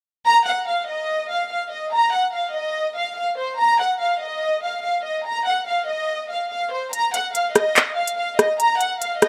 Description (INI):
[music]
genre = hip hop, drill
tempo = 144 BPM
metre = 4/4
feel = half-time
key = unclear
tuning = A4 = 440 Hz
[part]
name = warm studio violin section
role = melody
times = 0.3-9.3 s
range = C5 to Bb5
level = -22 LUFS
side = equal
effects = none
[part]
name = drill drum kit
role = drums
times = 6.9-9.3 s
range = handclaps, hi-hat, rim click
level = -19 LUFS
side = equal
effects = none
[sound]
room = light reverb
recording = rough home demo mix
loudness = -22 LUFS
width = mono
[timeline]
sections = 0.3-6.9 A section; 6.9-9.3 B section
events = kick muted 6.9-9.3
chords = none